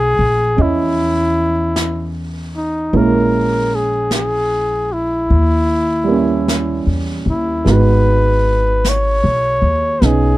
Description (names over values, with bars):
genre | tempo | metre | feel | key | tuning
jazz ballad | 51 BPM | 4/4 | swing 66% on 8ths | unclear | A4 = 442 Hz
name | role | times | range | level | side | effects
breathy trumpet | melody | 0.0-10.4 s | D#4 to C#5 | -17 LUFS | left 1 dB | none
warm grand piano | accompaniment | 0.0-10.4 s | E3 to D#5 | -19 LUFS | right 5 dB | none
upright bass | bass | 0.0-10.4 s | G#1 to E2 | -17 LUFS | left 1 dB | none
jazz brush drum kit | drums | 0.6-10.4 s | brushed snare drum, hi-hat, snare drum | -26 LUFS | equal | none
room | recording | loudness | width
little or no reverb | none | -13 LUFS | side -17 dB against mid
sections
0.0-10.4 A section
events
none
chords
0.0 Amaj9; 2.9 A#m7b5; 5.3 D#7b9; 7.7 G#m7